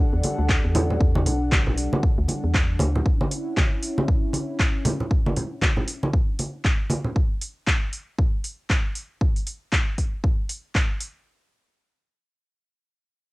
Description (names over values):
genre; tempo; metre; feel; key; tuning
deep house; 117 BPM; 4/4; swing 59% on 16ths; unclear; A4 = 440 Hz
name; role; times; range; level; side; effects
warm analog pad; sustained chords; 0.0-7.1 s; G3 to F#5; -30 LUFS; left 1 dB; chorus, sidechain pumping, cassette tape
organ-like FM bass; bass; 0.1-3.0 s; B1 to E2; -24 LUFS; equal; sidechain pumping
house drum kit; drums; 0.2-11.1 s; handclaps, hi-hat; -27 LUFS; equal; small room reverb, cassette tape
congas; percussion; 0.2-7.1 s; none; -26 LUFS; right 1 dB; none
electronic kick drum; drums; 0.5-10.9 s; none; -22 LUFS; equal; small room reverb, cassette tape
room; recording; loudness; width
light reverb; home recording on cassette; -21 LUFS; side -22 dB against mid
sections
0.0-11.3 A section; 11.3-13.3 B section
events
filter sweep on analog synth pad 0.0-7.2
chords
0.0 Em11; 2.8 Dmaj9; 11.3 N.C.